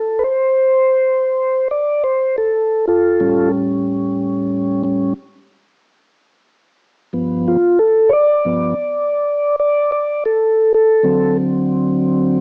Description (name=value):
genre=blues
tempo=61 BPM (dotted quarters)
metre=12/8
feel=straight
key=unclear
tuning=A4 = 440 Hz
part: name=mellow tonewheel organ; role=sustained chords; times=0.0-12.4 s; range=G2 to D5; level=-16 LUFS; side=equal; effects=slow rotary speaker, cassette tape
room=light reverb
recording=home recording on cassette, small speaker sound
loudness=-16 LUFS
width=mono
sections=0.0-12.4 A section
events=tonewheel organ solo 0.0-12.4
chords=0.0 D7(no3) (rootless); 3.2 A7; 7.1 G7; 11.1 D7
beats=0.24 1.23 2.21 | 3.20 4.18 5.17 6.15 | 7.13 8.11 9.10 10.08 | 11.06 12.04